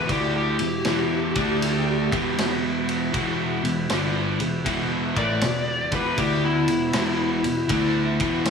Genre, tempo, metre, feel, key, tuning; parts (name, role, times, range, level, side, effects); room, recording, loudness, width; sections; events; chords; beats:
blues rock power trio and southern rock; 79 BPM; 4/4; swing 66% on 8ths; E minor; A4 = 440 Hz
overdriven slide guitar; melody; 0.0-8.5 s; E4 to D5; -26 LUFS; left 3 dB; slapback echo
lightly driven lead guitar; second line; 0.0-8.5 s; B3 to B4; -33 LUFS; right 4 dB
overdriven tonewheel organ; sustained chords; 0.0-8.5 s; A3 to G5; -36 LUFS; right 6 dB
distorted electric guitar; riff; 0.0-8.5 s; E2 to D4; -25 LUFS; equal; distortion
fuzz picked electric bass; bass; 0.0-8.5 s; E1 to D2; -28 LUFS; equal; overdrive
vintage drum kit; drums; 0.1-8.5 s; kick drum, ride cymbal, snare drum; -28 LUFS; equal
little or no reverb; -21 LUFS; side -6 dB against mid
0.0-8.5 A section
0.0 Em
| 0.09 0.85 1.61 2.37 | 3.13 3.90 4.66 5.42 | 6.18 6.94 7.70 8.46